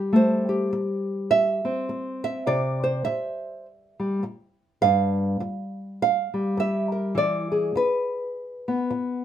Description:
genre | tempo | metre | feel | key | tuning
folk, solo fingerstyle acoustic guitar | 103 BPM | 4/4 | swing 59% on 8ths | unclear | A4 = 442 Hz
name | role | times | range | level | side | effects
nylon-string guitar | solo | 0.0-9.2 s | G2 to F5 | -22 LUFS | right 1 dB | none
room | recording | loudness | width
moderate studio reverb, RT60 0.5 s | minimal, uncompressed stereo recording | -22 LUFS | side -10 dB against mid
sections
0.0-9.2 A section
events
none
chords
0.1 Am7; 2.5 C; 4.8 G7(no3); 7.2 E7

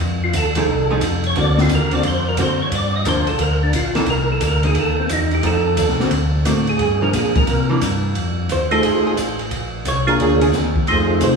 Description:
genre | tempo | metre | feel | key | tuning
soul jazz organ trio | 176 BPM | 4/4 | swing 65% on 8ths | F mixolydian | A4 = 440 Hz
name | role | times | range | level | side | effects
mellow tonewheel organ | bass | 0.0-11.4 s | G#1 to C3 | -20 LUFS | left 1 dB | chorus vibrato, slow rotary speaker
open jazz drum kit | drums | 0.0-11.3 s | hi-hat, kick drum, ride cymbal, snare drum | -23 LUFS | equal | none
percussive tonewheel organ | melody | 0.2-11.4 s | A3 to Eb5 | -20 LUFS | equal | slow rotary speaker, chorus vibrato
archtop guitar, miked and amplified | accompaniment | 0.6-11.4 s | D3 to C#5 | -22 LUFS | right 2 dB | none
room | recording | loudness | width
wet scoring stage reverb, RT60 1.8 s | recorded in a church or concert hall | -15 LUFS | side -5 dB against mid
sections
0.0-8.2 A section; 8.2-11.4 A section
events
tonewheel organ solo 0.0-8.2; hollow-body jazz guitar solo 8.2-11.4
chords
0.0 F7#9; 1.4 D7alt; 2.7 Gm7; 4.1 C7#9; 5.4 F7; 6.1 D7b13; 6.8 Gm7; 7.5 C9; 8.2 F7#9; 9.5 Bb7#9

